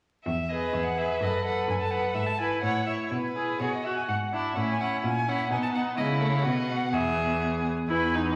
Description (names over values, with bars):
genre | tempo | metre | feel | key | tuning
quick classical-period movement for string quartet | 126 BPM | 2/4 | straight | E major | A4 = 443 Hz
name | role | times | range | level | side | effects
rich violin | melody | 0.2-8.3 s | B4 to A5 | -34 LUFS | equal | none
clear cello | bass | 0.3-8.4 s | E2 to C#3 | -33 LUFS | equal | none
clear violin | second line | 0.5-8.3 s | D#4 to C#5 | -34 LUFS | equal | none
rich viola | accompaniment | 0.5-8.4 s | G#3 to A4 | -34 LUFS | equal | none
room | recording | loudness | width
wet recital hall reverb, RT60 1.4 s | vinyl crackle | -28 LUFS | mono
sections
0.3-7.9 A section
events
none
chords
0.3 E; 1.2 B5/F#; 2.2 E/G#; 2.6 A; 3.1 E/B; 3.6 B5; 4.1 E7/G#; 4.6 A; 5.0 F#7/A#; 5.5 B; 6.0 C#m; 6.4 B; 6.9 E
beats
| 0.27 0.74 | 1.22 1.69 | 2.16 2.63 | 3.12 3.60 | 4.09 4.57 | 5.04 5.51 | 5.98 6.45 | 6.93 7.41 | 7.90